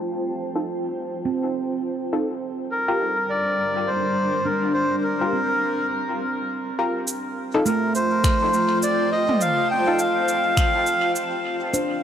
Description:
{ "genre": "ambient dub", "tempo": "103 BPM", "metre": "4/4", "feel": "swing 59% on 16ths", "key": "unclear", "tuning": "A4 = 440 Hz", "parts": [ { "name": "granular cloud pad", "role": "sustained chords", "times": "0.0-12.0 s", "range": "G3 to A5", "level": "-28 LUFS", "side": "left 1 dB", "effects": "built-in reverb" }, { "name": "handpan", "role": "arpeggios", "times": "0.0-12.0 s", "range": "A3 to C5", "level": "-29 LUFS", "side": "right 4 dB", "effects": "low-pass filter, dub echo" }, { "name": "filtered dub chord stab", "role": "stabs", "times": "0.6-10.0 s", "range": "Eb4 to Bb4", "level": "-29 LUFS", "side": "left 1 dB", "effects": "chorus, dub echo" }, { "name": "melodica", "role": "melody", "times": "2.7-11.1 s", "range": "Bb4 to G5", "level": "-22 LUFS", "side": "equal", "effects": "dub echo" }, { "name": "organic electronic drum kit", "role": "drums", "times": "7.1-11.9 s", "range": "cabasa, finger snaps, toms", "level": "-30 LUFS", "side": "right 1 dB", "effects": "overdrive, studio ambience, dub echo" }, { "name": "electronic kick drum", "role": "drums", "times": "8.2-10.7 s", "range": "none", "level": "-21 LUFS", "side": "equal", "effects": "overdrive, studio ambience" } ], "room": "moderate huge ambient reverb, RT60 8.0 s", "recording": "low-pass filter", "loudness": "-20 LUFS", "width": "side -9 dB against mid", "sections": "0.0-7.1 A section; 7.1-12.0 B section", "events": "filter sweep on handpan 0.0-7.1; filter sweep 0.0-7.1; break 5.9-7.1", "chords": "0.0 F7; 2.4 Gm7; 7.1 F" }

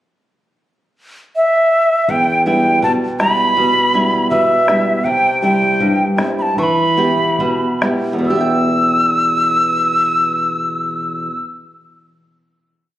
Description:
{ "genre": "andean folk, Andean ensemble", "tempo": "65-81 BPM", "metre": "2/4", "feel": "straight", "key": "E minor", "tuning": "A4 = 440 Hz", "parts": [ { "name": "quena", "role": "melody", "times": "1.4-11.4 s", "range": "E5 to E6", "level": "-14 LUFS", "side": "equal", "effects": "none" }, { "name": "flamenco guitar", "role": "accompaniment", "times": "2.1-11.6 s", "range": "E2 to G5", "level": "-17 LUFS", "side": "equal", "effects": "none" }, { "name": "bombo", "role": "percussion", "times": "2.1-8.7 s", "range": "none", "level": "-25 LUFS", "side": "left 2 dB", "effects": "none" } ], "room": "moderate concert hall reverb, RT60 1.8 s", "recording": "recorded on a phone in the room, club reverb", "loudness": "-13 LUFS", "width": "side -13 dB against mid", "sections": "0.6-2.1 pickup bar; 2.1-8.3 A section; 8.3-11.9 final chord", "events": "slowing down 5.1-8.3", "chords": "0.6 N.C.; 2.1 Em; 5.1 C; 6.6 Em" }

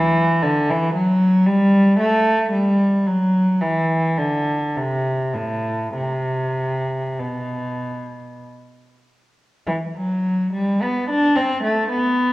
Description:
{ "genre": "classical, baroque-style suite movement for unaccompanied cello", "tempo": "46-58 BPM", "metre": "3/4", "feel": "rubato", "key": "unclear", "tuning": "A4 = 439 Hz", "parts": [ { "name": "warm cello", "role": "solo", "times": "0.0-12.3 s", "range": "A2 to D4", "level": "-17 LUFS", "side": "equal", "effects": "none" } ], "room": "wet recital hall reverb, RT60 1.4 s", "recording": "worn, warbling old tape, cassette tape, warbly pitch drift", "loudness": "-17 LUFS", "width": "side -18 dB against mid", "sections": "0.0-9.7 A section; 9.7-12.3 A section", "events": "none", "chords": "none" }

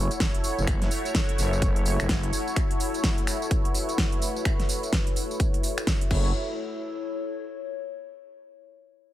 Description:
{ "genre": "bass house", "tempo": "127 BPM", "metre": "4/4", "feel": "swing 60% on 16ths", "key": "F# minor", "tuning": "A4 = 440 Hz", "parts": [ { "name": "sweeping resonant pad", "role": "sustained chords", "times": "0.0-6.3 s", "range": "A3 to C#5", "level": "-32 LUFS", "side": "equal", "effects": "chorus, sidechain pumping" }, { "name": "growling FM bass", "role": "bass", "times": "0.0-2.3, 6.1-6.3 s", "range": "F#1", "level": "-26 LUFS", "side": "equal", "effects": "overdrive, sidechain pumping" }, { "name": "sub drop", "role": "sound effects", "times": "0.2-0.7 s", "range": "none", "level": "barely audible", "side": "none", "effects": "none" }, { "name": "warbly tape-like pad", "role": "texture", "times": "0.0-8.2 s", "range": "E4 to C#5", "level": "-34 LUFS", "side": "left 3 dB", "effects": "chorus, built-in reverb, sidechain pumping" }, { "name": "big-room dance drum kit", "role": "drums", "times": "0.1-6.2 s", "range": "crash cymbal, finger snaps, hi-hat, snare drum, tambourine", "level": "-30 LUFS", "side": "equal", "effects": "none" }, { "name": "electronic kick drum", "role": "drums", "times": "0.2-6.2 s", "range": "none", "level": "-26 LUFS", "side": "equal", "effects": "none" } ], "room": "little or no reverb", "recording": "none", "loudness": "-24 LUFS", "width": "side -13 dB against mid", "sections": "0.0-6.3 A section; 6.3-8.2 B section", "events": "impact 0.0-0.7", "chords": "0.0 F#m7; 6.3 A/E" }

